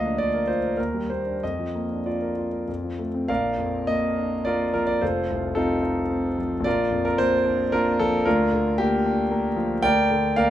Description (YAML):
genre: classical, romantic character piece for solo piano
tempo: 91-118 BPM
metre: 3/4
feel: rubato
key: Bb major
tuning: A4 = 440 Hz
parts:
  - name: clear concert grand piano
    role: solo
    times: 0.0-10.5 s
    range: F1 to G5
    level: -21 LUFS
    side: equal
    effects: none
room: moderate large studio reverb, RT60 1.2 s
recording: none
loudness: -21 LUFS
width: side -12 dB against mid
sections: 0.0-3.3 A section; 3.3-10.5 B section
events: none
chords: 0.0 Bb/D; 0.8 Ebmaj7; 1.4 Bb/F; 2.7 F; 3.3 Bb; 5.0 F7; 6.7 Bb; 8.3 Bb/D